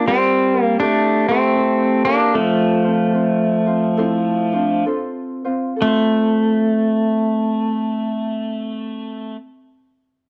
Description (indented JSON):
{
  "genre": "Hawaiian",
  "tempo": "62-82 BPM",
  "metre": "4/4",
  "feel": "swing 63% on 8ths",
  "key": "F major",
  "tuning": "A4 = 439 Hz",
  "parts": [
    { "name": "pedal steel guitar", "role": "melody", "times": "0.0-9.4 s", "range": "F3 to D4", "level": "-18 LUFS", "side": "equal", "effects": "none" },
    { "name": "vibraphone with soft mallets", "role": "second line", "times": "0.0-9.3 s", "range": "C4 to G4", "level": "-28 LUFS", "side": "equal", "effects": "cassette tape" },
    { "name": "ukulele", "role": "accompaniment", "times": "0.0-9.5 s", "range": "C4 to C5", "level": "-29 LUFS", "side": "equal", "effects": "cassette tape" }
  ],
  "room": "light reverb, studio reverb",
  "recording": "home recording on cassette",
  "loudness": "-18 LUFS",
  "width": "mono",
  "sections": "0.0-5.8 A section; 5.8-9.7 B section",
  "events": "slowing down 0.0-5.8",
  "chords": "0.0 C7sus4; 0.8 C6; 2.3 F"
}